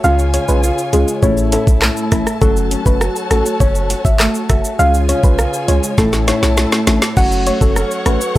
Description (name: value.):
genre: dancehall.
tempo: 101 BPM.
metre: 4/4.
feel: straight.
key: F# minor.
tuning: A4 = 440 Hz.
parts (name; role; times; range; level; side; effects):
soft round pluck; melody; 0.0-8.4 s; G#4 to F#5; -19 LUFS; equal; chorus.
percussive organ stab; accompaniment; 0.0-8.2 s; G#3 to F#4; -21 LUFS; left 3 dB; chorus.
warm studio string section; sustained chords; 0.0-8.4 s; E4 to C#6; -25 LUFS; left 2 dB; sidechain pumping.
flamenco guitar; arpeggios; 0.0-8.4 s; A2 to F#4; -22 LUFS; right 1 dB; none.
warm 808-style bass; bass; 0.0-8.4 s; F#1 to C#2; -17 LUFS; equal; none.
island pop drum kit; drums; 0.0-8.4 s; crash cymbal, handclaps, hi-hat, kick drum, rim click, shaker, snare drum; -16 LUFS; equal; none.
maracas and timbales; percussion; 0.0-8.4 s; none; -31 LUFS; left 2 dB; none.
room: digital ambience.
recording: dry, gritty hardware recording.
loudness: -12 LUFS.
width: side -16 dB against mid.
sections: 0.0-7.2 A section; 7.2-8.4 B section.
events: drum fill 6.0-7.2.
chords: 0.0 C#; 1.2 A; 2.4 F#m; 4.8 C#; 6.0 A; 7.2 F#m.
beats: | 0.04 0.63 1.23 1.82 | 2.42 3.01 3.60 4.20 | 4.79 5.39 5.98 6.58 | 7.17 7.76 8.36.